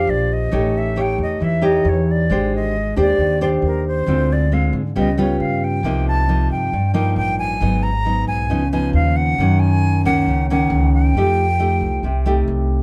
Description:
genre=bossa nova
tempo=136 BPM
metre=4/4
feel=straight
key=unclear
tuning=A4 = 441 Hz
part: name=silver concert flute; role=melody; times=0.0-12.4 s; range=Bb4 to Bb5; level=-25 LUFS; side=equal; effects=none
part: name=nylon-string guitar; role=accompaniment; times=0.0-12.8 s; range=Gb2 to C#5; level=-21 LUFS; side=equal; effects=none
part: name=upright bass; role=bass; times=0.0-12.8 s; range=Ab1 to Ab2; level=-23 LUFS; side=equal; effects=none
room=moderate studio reverb, RT60 0.8 s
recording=band playing live in one room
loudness=-18 LUFS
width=mono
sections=0.0-12.8 A section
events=none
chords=0.0 Bb69; 0.5 A7#11; 2.3 Abmaj7#11; 4.1 Dm7b5; 5.0 Db7#11; 5.8 Cm7; 7.6 Abm7; 8.5 Db9; 9.4 Gb6; 11.2 F9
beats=0.08 | 0.52 0.97 1.41 1.85 | 2.29 2.74 3.18 3.62 | 4.07 4.51 4.95 5.39 | 5.84 6.28 6.72 7.17 | 7.61 8.05 8.49 8.94 | 9.38 9.82 10.27 10.71 | 11.15 11.59 12.04 12.48

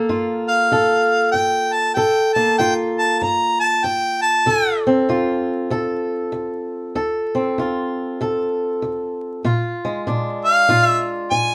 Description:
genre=acoustic country blues, solo or duo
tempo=96 BPM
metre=4/4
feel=swing 63% on 8ths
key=D minor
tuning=A4 = 440 Hz
part: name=fingerpicked swing-style acoustic guitar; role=accompaniment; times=0.0-11.5 s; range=D2 to A4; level=-22 LUFS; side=equal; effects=none
part: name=clear harmonica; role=melody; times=0.5-4.8, 10.5-11.5 s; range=F5 to Bb5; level=-19 LUFS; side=equal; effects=none
room=moderate studio reverb, RT60 0.6 s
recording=band playing live in one room, vinyl crackle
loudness=-19 LUFS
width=mono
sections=0.0-11.5 A section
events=none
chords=0.0 Gm9; 4.5 Dm7; 9.4 Bb7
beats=0.10 0.72 1.35 | 1.97 2.60 3.22 3.84 | 4.47 5.09 5.71 6.34 | 6.96 7.58 8.21 8.83 | 9.45 10.07 10.69 11.31

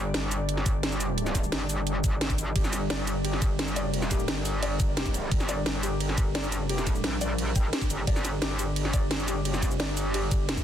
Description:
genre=dark technical drum and bass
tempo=174 BPM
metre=4/4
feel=straight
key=G minor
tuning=A4 = 440 Hz
part: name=deep dark ambient pad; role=sustained chords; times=0.0-10.6 s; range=G3 to D5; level=-34 LUFS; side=equal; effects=chorus, built-in reverb, sidechain pumping
part: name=metallic wobble bass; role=bass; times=0.0-10.6 s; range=G1 to Bb1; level=-30 LUFS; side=equal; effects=chorus, overdrive, sidechain pumping
part: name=drum and bass drum kit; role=drums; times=0.1-10.6 s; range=hi-hat, ride cymbal, shaker, snare drum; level=-31 LUFS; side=right 1 dB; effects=overdrive, small room ambience
part: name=electronic kick drum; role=drums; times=0.7-10.6 s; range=none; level=-26 LUFS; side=equal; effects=small room ambience
part: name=felt-muted upright piano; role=arpeggios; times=2.6-10.4 s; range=G4 to G5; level=-36 LUFS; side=left 3 dB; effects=sidechain pumping, digital delay
room=digital ambience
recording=dense, heavily limited modern master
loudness=-25 LUFS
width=side -10 dB against mid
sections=0.0-10.6 A section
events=none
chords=0.0 Gm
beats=0.14 0.49 0.83 | 1.18 1.52 1.87 2.21 | 2.56 2.90 3.25 3.59 | 3.94 4.28 4.62 4.97 | 5.32 5.66 6.00 6.35 | 6.69 7.04 7.38 7.73 | 8.07 8.42 8.76 9.11 | 9.45 9.80 10.14 10.49

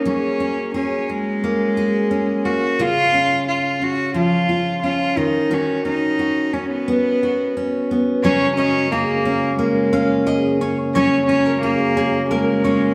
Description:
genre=acoustic pop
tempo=88 BPM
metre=4/4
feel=straight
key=unclear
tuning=A4 = 439 Hz
part: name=rich cello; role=melody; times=0.0-12.9 s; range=Ab3 to Gb4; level=-23 LUFS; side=equal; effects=none
part: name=fingerpicked steel-string acoustic guitar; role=accompaniment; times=0.0-12.9 s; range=Db3 to Ab4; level=-22 LUFS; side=equal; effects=none
part: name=mellow tonewheel organ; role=sustained chords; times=8.2-12.9 s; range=Gb2 to Bb3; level=-31 LUFS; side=equal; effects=chorus vibrato, slow rotary speaker
part: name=mandolin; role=arpeggios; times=8.2-12.8 s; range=Ab4 to F5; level=-30 LUFS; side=equal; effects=none
room=wet stone room reverb, RT60 1.3 s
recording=band playing live in one room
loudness=-19 LUFS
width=mono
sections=0.0-8.2 A section; 8.2-12.9 B section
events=none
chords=0.0 Gbadd9; 2.8 Db; 5.2 Cbadd9/Eb; 8.2 Gbadd9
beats=| 0.06 0.74 1.42 2.10 | 2.78 3.47 4.15 4.83 | 5.51 6.19 6.87 7.55 | 8.23 8.91 9.59 10.27 | 10.94 11.62 12.30

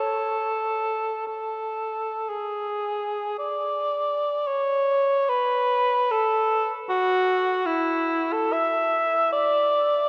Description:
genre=classical, free, expressive piece for unaccompanied cor anglais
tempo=49-78 BPM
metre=3/4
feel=rubato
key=A major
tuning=A4 = 439 Hz
part: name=dark cor anglais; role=solo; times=0.0-10.1 s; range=E4 to E5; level=-24 LUFS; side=equal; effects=none
room=wet cathedral reverb, RT60 4.2 s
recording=dark, warm production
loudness=-24 LUFS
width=mono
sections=0.0-4.5 A section; 4.5-10.1 B section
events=none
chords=none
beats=0.31 | 1.26 2.28 3.38 | 4.46 5.29 6.10 | 6.89 7.68 8.55 | 9.34

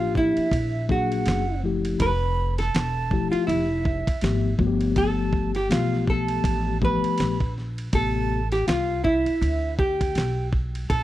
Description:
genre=hip hop, jazz-hop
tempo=81 BPM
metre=4/4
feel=swing 58% on 16ths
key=A minor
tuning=A4 = 437 Hz
part: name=hollow-body jazz guitar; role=melody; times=0.0-11.0 s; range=E4 to B4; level=-26 LUFS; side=right 1 dB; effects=none
part: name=breathy silver concert flute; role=second line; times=0.0-11.0 s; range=E5 to B5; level=-32 LUFS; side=right 7 dB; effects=none
part: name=mellow tine electric piano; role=accompaniment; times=0.0-8.4 s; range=C3 to G#4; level=-26 LUFS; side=left 5 dB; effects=medium stereo tremolo
part: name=upright bass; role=bass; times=0.0-11.0 s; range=E1 to D2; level=-27 LUFS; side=equal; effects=none
part: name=dusty soul sampler-style drum kit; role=drums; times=0.2-11.0 s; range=hi-hat, kick drum, ride cymbal, snare drum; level=-27 LUFS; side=equal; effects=none
room=digital ambience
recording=dry, close 1970s-style studio recording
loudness=-21 LUFS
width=side -14 dB against mid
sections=0.0-11.0 A section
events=none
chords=0.0 Bb6; 1.3 F#maj9; 2.0 Fmaj9; 4.6 G9; 7.9 Am9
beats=0.52 1.26 | 2.00 2.75 3.49 4.23 | 4.97 5.71 6.45 7.19 | 7.93 8.67 9.41 10.15 | 10.89

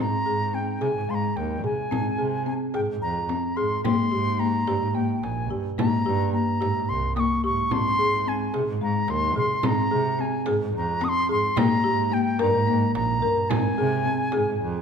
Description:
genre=contemporary instrumental, chamber music in an uneven meter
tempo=218 BPM (eighths)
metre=7/8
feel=straight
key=Ab major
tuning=A4 = 440 Hz
part: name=wooden flute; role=melody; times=0.0-14.8 s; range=G5 to Eb6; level=-26 LUFS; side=left 1 dB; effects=none
part: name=folk marimba with medium mallets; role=arpeggios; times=0.0-14.7 s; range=Ab3 to Bb4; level=-25 LUFS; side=left 2 dB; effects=none
part: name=rich double bass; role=bass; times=0.0-14.8 s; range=Bb1 to C3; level=-28 LUFS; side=right 4 dB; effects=none
part: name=frame drum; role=percussion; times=0.3-14.6 s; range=none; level=-32 LUFS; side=right 4 dB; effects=none
room=wet scoring stage reverb, RT60 1.7 s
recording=minimal, uncompressed stereo recording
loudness=-22 LUFS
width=side -6 dB against mid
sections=0.0-14.8 A section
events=none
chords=0.0 Ab; 3.9 Bb7sus2; 7.7 Abadd9; 11.6 Gm; 13.5 Ab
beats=0.26 0.54 0.81 1.09 1.37 1.64 | 1.92 2.19 2.47 2.75 3.02 3.30 3.58 | 3.85 4.13 4.40 4.68 4.96 5.23 5.51 | 5.78 6.06 6.33 6.61 6.89 7.16 7.44 | 7.71 7.99 8.27 8.54 8.82 9.09 9.37 | 9.64 9.92 10.20 10.47 10.75 11.02 11.30 | 11.57 11.85 12.12 12.40 12.68 12.95 13.23 | 13.50 13.78 14.05 14.33 14.61

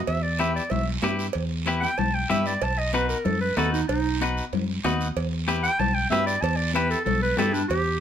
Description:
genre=latin, cumbia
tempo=189 BPM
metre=4/4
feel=straight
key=E harmonic minor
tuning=A4 = 439 Hz
part: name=clear clarinet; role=melody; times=0.1-8.0 s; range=D4 to A5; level=-25 LUFS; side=right 2 dB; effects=none
part: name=fingered electric bass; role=bass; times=0.1-8.0 s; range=B1 to G2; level=-28 LUFS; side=right 1 dB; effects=none
part: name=cowbell and timbales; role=percussion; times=0.1-7.9 s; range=none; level=-33 LUFS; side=right 7 dB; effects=none
part: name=guiro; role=percussion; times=0.1-8.0 s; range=none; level=-38 LUFS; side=right 6 dB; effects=none
part: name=clean electric guitar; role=accompaniment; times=0.4-7.6 s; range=D#4 to B4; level=-28 LUFS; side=left 3 dB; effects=none
part: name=congas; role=percussion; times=0.4-7.5 s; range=none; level=-31 LUFS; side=left 8 dB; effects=none
room=moderate studio reverb, RT60 0.7 s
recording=minimal, uncompressed stereo recording, faint mains hum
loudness=-22 LUFS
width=side -9 dB against mid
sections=0.1-8.0 A section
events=clarinet solo 0.1-8.0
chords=0.1 Em; 2.6 B; 5.2 Em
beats=| 0.08 0.40 0.72 1.03 | 1.35 1.67 1.99 2.30 | 2.62 2.94 3.26 3.57 | 3.89 4.21 4.53 4.84 | 5.16 5.48 5.80 6.12 | 6.43 6.75 7.07 7.39 | 7.70

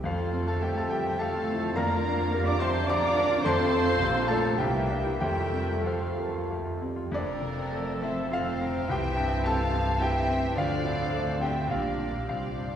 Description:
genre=classical, romantic movement for piano and orchestra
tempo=92-109 BPM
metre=3/4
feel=rubato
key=F major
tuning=A4 = 440 Hz
part: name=clear grand piano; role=melody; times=0.0-12.8 s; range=Bb1 to D6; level=-29 LUFS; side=left 1 dB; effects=none
part: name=warm chamber violin section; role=melody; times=0.0-12.8 s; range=Bb4 to Bb5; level=-38 LUFS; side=left 2 dB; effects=none
part: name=clear clarinet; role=second line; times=0.0-12.8 s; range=C4 to D5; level=-37 LUFS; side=left 1 dB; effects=none
part: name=mellow hollow flute section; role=second line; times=0.0-12.8 s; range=A4 to A5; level=-37 LUFS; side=equal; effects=none
part: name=warm chamber violin section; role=second line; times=0.0-12.8 s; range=D5 to D6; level=-39 LUFS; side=left 2 dB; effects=none
part: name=mellow bassoon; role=accompaniment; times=0.0, 5.9-12.8 s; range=E3 to C4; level=-38 LUFS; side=right 1 dB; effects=none
part: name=warm chamber viola section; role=accompaniment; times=0.0-12.8 s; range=C4 to D5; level=-36 LUFS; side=right 3 dB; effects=none
part: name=clear trombone section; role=sustained chords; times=0.0-6.8 s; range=C3 to Bb3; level=-38 LUFS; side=right 1 dB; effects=none
part: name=clear chamber double bass section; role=bass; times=0.0-12.8 s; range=F1 to F2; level=-34 LUFS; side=right 2 dB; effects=none
part: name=dark chamber cello section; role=bass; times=0.0-12.8 s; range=F2 to D4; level=-36 LUFS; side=right 3 dB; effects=none
part: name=warm oboe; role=second line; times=0.1-12.8 s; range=A4 to D6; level=-39 LUFS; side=right 1 dB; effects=none
part: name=mellow French horn section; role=sustained chords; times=0.1-12.5 s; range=E3 to Bb4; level=-36 LUFS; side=left 4 dB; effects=none
room=wet concert hall reverb, RT60 1.8 s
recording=recorded in a church or concert hall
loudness=-25 LUFS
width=side -9 dB against mid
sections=0.0-7.1 A section; 7.1-12.8 B section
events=none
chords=0.0 F; 1.8 Bb/F; 3.4 F; 4.0 Bb; 4.6 C9; 5.2 F; 8.9 C; 10.6 Dm7; 11.7 Gm/Bb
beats=| 0.04 0.62 1.19 | 1.76 2.33 2.89 | 3.44 4.00 4.59 | 5.21 5.86 6.52 | 7.15 7.73 8.31 | 8.89 9.45 10.00 | 10.56 11.12 11.69 | 12.28

